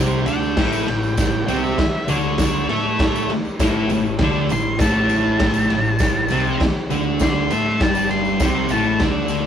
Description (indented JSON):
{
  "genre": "garage rock duo or trio",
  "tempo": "100 BPM",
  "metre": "4/4",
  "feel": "straight",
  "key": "unclear",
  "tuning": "A4 = 437 Hz",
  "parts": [
    { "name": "thick fuzz guitar", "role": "riff", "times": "0.0-9.5 s", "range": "G2 to A4", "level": "-20 LUFS", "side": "equal", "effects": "distortion" },
    { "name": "fuzz fingered electric bass", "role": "bass", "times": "0.0-9.5 s", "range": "G1 to A2", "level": "-27 LUFS", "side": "equal", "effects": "overdrive" },
    { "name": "tambourine", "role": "percussion", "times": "0.1-9.4 s", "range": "none", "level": "-39 LUFS", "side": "right 4 dB", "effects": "none" },
    { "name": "octave-fuzz lead guitar", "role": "melody", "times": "0.3-9.0 s", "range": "C#5 to C6", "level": "-24 LUFS", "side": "left 1 dB", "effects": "distortion" },
    { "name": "raw garage drum kit", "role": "drums", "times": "0.3-9.4 s", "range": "crash cymbal, kick drum, ride cymbal, snare drum", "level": "-21 LUFS", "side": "equal", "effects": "none" }
  ],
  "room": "moderate small room reverb, RT60 0.6 s",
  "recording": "rough rehearsal-room recording, tube saturation",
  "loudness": "-16 LUFS",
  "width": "side -9 dB against mid",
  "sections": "0.0-9.5 A section",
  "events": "lead electric guitar solo 0.0-9.5",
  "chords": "none"
}